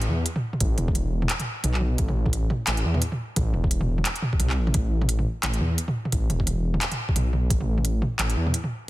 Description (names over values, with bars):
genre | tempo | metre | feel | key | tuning
half-time drum and bass | 174 BPM | 4/4 | swing 58% on 16ths, half-time | A minor | A4 = 440 Hz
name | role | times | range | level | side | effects
dark detuned saw bass | bass | 0.0-8.5 s | E1 to E2 | -24 LUFS | equal | none
organic electronic drum kit | drums | 0.0-8.7 s | handclaps, hi-hat, toms | -27 LUFS | equal | none
electronic kick drum | drums | 0.6-7.6 s | none | -25 LUFS | equal | overdrive
room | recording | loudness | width
digital ambience | dense, heavily limited modern master | -22 LUFS | side -17 dB against mid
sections
0.0-4.7 A section; 4.7-8.9 A section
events
drop 0.0-4.7, 4.7-8.9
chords
none